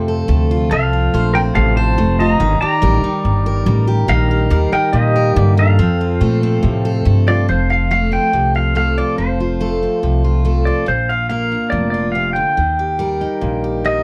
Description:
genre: honky-tonk and classic country.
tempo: 142 BPM.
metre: 4/4.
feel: straight.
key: F mixolydian.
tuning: A4 = 440 Hz.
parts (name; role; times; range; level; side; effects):
picked steel-string acoustic guitar; accompaniment; 0.0-14.0 s; Bb2 to C5; -21 LUFS; equal; none.
upright bass; bass; 0.0-14.0 s; F1 to Bb2; -19 LUFS; equal; none.
pedal steel guitar; melody; 0.7-14.0 s; G4 to Bb5; -21 LUFS; equal; none.
room: light reverb.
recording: close, detailed microphones.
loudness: -16 LUFS.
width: mono.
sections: 0.0-7.5 A section; 7.5-14.0 B section.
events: none.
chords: 0.0 F; 2.4 Eb; 5.8 F; 10.9 Bb; 12.6 Eb.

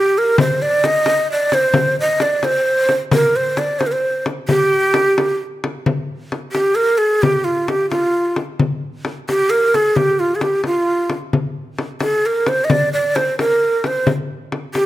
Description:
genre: Persian modal ensemble.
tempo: 88 BPM (dotted quarters).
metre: 6/8.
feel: straight.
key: G dastgah shur.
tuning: A4 = 440 Hz.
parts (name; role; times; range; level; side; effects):
breathy ney; melody; 0.0-14.9 s; F4 to Eb5; -15 LUFS; right 1 dB; none.
frame drum; percussion; 0.4-14.9 s; none; -20 LUFS; left 3 dB; none.
room: moderate recital hall reverb, RT60 1.4 s.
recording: close, detailed microphones.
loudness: -15 LUFS.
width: side -14 dB against mid.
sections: 0.0-5.9 A section; 5.9-14.9 B section.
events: none.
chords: none.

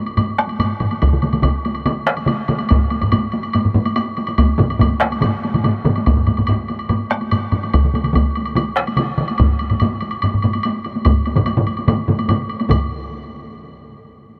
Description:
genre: japanese traditional, taiko drum ensemble.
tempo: 144 BPM.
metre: 4/4.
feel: straight.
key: none.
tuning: none.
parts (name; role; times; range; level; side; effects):
woodblock; percussion; 0.1-12.9 s; none; -28 LUFS; equal; none.
taiko ensemble; percussion; 0.2-12.9 s; none; -25 LUFS; equal; none.
taiko ensemble; percussion; 0.2-13.1 s; none; -22 LUFS; equal; none.
solo taiko drums; percussion; 1.0-12.9 s; none; -20 LUFS; equal; none.
taiko ensemble; percussion; 1.0-13.1 s; none; -24 LUFS; equal; none.
room: moderate huge ambient reverb, RT60 4.8 s.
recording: none.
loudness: -18 LUFS.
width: mono.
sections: 0.0-12.7 A section; 12.7-14.3 B section.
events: speeding up 0.0-14.3.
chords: none.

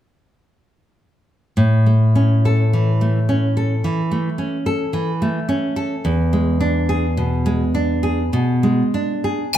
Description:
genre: classical.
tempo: 47-55 BPM.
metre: 4/4.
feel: rubato.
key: A major.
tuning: A4 = 440 Hz.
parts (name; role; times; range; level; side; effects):
nylon-string guitar; accompaniment; 1.6-9.6 s; E2 to A4; -16 LUFS; equal; none.
room: moderate recital hall reverb, RT60 1.4 s.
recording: close, detailed microphones.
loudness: -16 LUFS.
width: side -11 dB against mid.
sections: 1.6-9.6 A section.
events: none.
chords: 1.6 A; 6.1 E7.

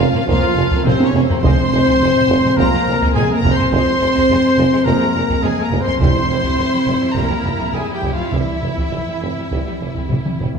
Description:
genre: cinematic, epic orchestral film score.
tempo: 105 BPM.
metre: 4/4.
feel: straight.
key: F harmonic minor.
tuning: A4 = 440 Hz.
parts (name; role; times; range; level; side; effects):
warm symphonic violin section; melody; 0.0-10.1 s; C5 to C6; -24 LUFS; left 1 dB; none.
rich symphonic violin section; second line; 0.0-10.6 s; G3 to E4; -26 LUFS; left 2 dB; none.
rich symphonic viola section; accompaniment; 0.0-10.1 s; C4 to C5; -25 LUFS; equal; none.
dark French horn section; sustained chords; 0.0-10.1 s; C3 to C4; -20 LUFS; left 1 dB; none.
clear symphonic double bass section; bass; 0.0-10.5 s; F1; -24 LUFS; right 4 dB; none.
dark symphonic cello section; bass; 0.0-10.6 s; F2; -25 LUFS; right 2 dB; none.
warm tuba; bass; 0.0-10.5 s; F1; -25 LUFS; right 4 dB; none.
taiko ensemble; drums; 0.1-10.6 s; none; -21 LUFS; equal; none.
warm trombone section; sustained chords; 0.3-9.7 s; E3 to Bb3; -28 LUFS; right 4 dB; none.
warm trumpet; stabs; 0.3-10.1 s; C4 to C5; -23 LUFS; left 1 dB; none.
timpani; percussion; 1.4-2.3, 6.0-6.8 s; F2; -23 LUFS; equal; none.
room: moderate scoring stage reverb, RT60 1.8 s.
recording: small room reverb.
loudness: -14 LUFS.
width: side -6 dB against mid.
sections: 0.0-10.6 A section.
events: drum fill 0.8-1.4, 10.1-10.6.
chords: 0.0 Bbm/F; 1.4 Fm; 6.0 C/F.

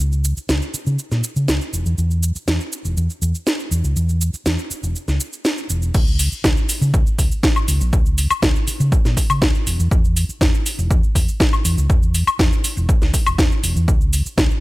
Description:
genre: filtered disco house.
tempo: 121 BPM.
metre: 4/4.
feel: straight.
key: unclear.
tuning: A4 = 442 Hz.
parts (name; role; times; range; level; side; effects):
hollow-body short-scale fingered electric bass; bass; 0.0-14.5 s; Fb1 to Db3; -19 LUFS; equal; sidechain pumping, low-pass filter.
house drum kit; drums; 0.0-14.6 s; cabasa, crash cymbal, hi-hat, snare drum, woodblock; -21 LUFS; equal; overdrive, sidechain pumping on perc, sidechain pumping on cymbals, sidechain pumping on hats.
electronic kick drum; drums; 5.9-14.5 s; none; -17 LUFS; equal; none.
room: little or no reverb.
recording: none.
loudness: -16 LUFS.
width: side -19 dB against mid.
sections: 0.0-5.9 A section; 5.9-14.6 B section.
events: filter sweep on fingered electric bass 0.0-5.9; drop 5.9-14.6.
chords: none.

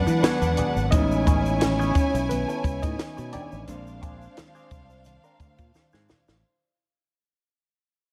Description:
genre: lush 1970s-style soul.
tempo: 87 BPM.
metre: 4/4.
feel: swing 54% on 16ths.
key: unclear.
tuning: A4 = 439 Hz.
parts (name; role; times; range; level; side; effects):
warm studio violin section; second line; 0.0-6.4 s; D4 to G#5; -33 LUFS; equal; none.
reed electric piano; accompaniment; 0.0-6.5 s; F#3 to D#5; -30 LUFS; equal; none.
modern bright fingered electric bass; bass; 0.0-6.4 s; G#1 to E3; -29 LUFS; equal; none.
clean electric guitar; riff; 0.1-6.3 s; B3 to A#4; -39 LUFS; equal; wah, spring reverb.
egg shaker; percussion; 0.1-6.4 s; none; -51 LUFS; equal; none.
compact cocktail drum kit; drums; 0.2-6.4 s; hi-hat, kick drum, snare drum; -27 LUFS; equal; none.
congas; percussion; 0.2-6.3 s; none; -37 LUFS; equal; none.
room: light reverb.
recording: none.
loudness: -23 LUFS.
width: mono.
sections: 0.0-6.4 A section.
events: fade-out 0.0-6.4; reed electric piano solo 0.0-6.4; drum fill 5.8-6.4.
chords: 0.0 E9; 0.9 Amaj9; 3.7 A#9.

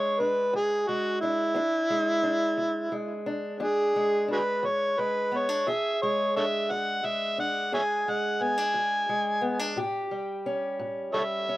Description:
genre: blues.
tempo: 58 BPM (dotted quarters).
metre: 12/8.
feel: straight.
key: E mixolydian.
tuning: A4 = 440 Hz.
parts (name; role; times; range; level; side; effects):
overdriven harmonica; melody; 0.0-11.6 s; E4 to G#5; -25 LUFS; equal; none.
fingerpicked steel-string acoustic guitar; accompaniment; 0.0-11.6 s; E2 to G#4; -31 LUFS; equal; none.
room: little or no reverb.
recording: recorded outdoors, with no room sound.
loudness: -25 LUFS.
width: side -17 dB against mid.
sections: 0.0-11.6 A section.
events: harmonica solo 0.0-11.6.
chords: 0.0 E7; 9.8 A7.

